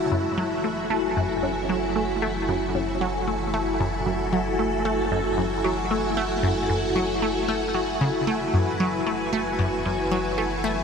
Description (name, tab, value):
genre	ambient, sequencer-driven space music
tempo	114 BPM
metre	4/4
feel	straight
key	F# minor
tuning	A4 = 440 Hz
part	string machine, full ensemble	sustained chords	0.0-10.8 s	G#3 to B4	-25 LUFS	equal	phaser, ensemble chorus, shimmer reverb
part	warm sub bass	bass	0.0-10.8 s	F#1	-35 LUFS	equal	none
part	bubbling stepped-filter texture	texture	0.0-10.8 s	G#5 to A5	-34 LUFS	left 4 dB	chorus, built-in reverb, shimmer reverb
part	resonant blip pluck	riff	0.1-10.8 s	F#2 to A3	-26 LUFS	equal	phaser, analog delay, shimmer reverb
room	wet huge ambient reverb, RT60 7.2 s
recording	dreamy mix soaked in reverb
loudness	-22 LUFS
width	side -6 dB against mid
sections	0.0-10.8 A section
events	none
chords	0.0 F#m7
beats	| 0.12 0.65 1.17 1.70 | 2.22 2.75 3.28 3.80 | 4.33 4.86 5.38 5.91 | 6.43 6.96 7.49 8.01 | 8.54 9.07 9.59 10.12 | 10.64